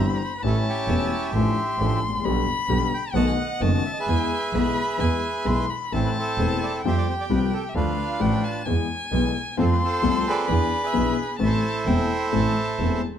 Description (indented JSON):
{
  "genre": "tango",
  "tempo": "131 BPM",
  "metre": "4/4",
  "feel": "rubato",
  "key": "A minor",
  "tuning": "A4 = 437 Hz",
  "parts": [
    { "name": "bandoneon", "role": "melody", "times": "0.0-13.0 s", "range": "C4 to A5", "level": "-27 LUFS", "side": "right 3 dB", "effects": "none" },
    { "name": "warm violin", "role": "second line", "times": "0.0-13.0 s", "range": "E5 to C6", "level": "-29 LUFS", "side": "left 3 dB", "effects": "none" },
    { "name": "warm concert grand piano", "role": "accompaniment", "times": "0.0-13.0 s", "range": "E1 to A4", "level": "-25 LUFS", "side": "left 5 dB", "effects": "none" },
    { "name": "clear double bass", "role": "bass", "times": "0.0-13.0 s", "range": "E1 to F2", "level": "-25 LUFS", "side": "right 3 dB", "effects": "none" }
  ],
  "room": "light reverb",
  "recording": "close, detailed microphones",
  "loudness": "-21 LUFS",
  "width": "side -9 dB against mid",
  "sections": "0.0-13.2 A section",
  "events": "none",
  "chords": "0.4 A7; 1.3 Dm/A; 2.2 G/B; 3.1 B7; 4.1 E; 5.9 Am; 6.8 Fsus2; 7.8 Dm; 8.7 E; 9.6 F; 10.5 E7; 11.4 Am",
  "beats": "| 0.43 0.88 1.34 1.79 | 2.25 2.70 3.15 3.61 | 4.07 4.53 4.99 5.45 | 5.92 6.38 6.84 7.30 | 7.76 8.21 8.66 9.11 | 9.57 10.03 10.48 10.94 | 11.40 11.86 12.33 12.80"
}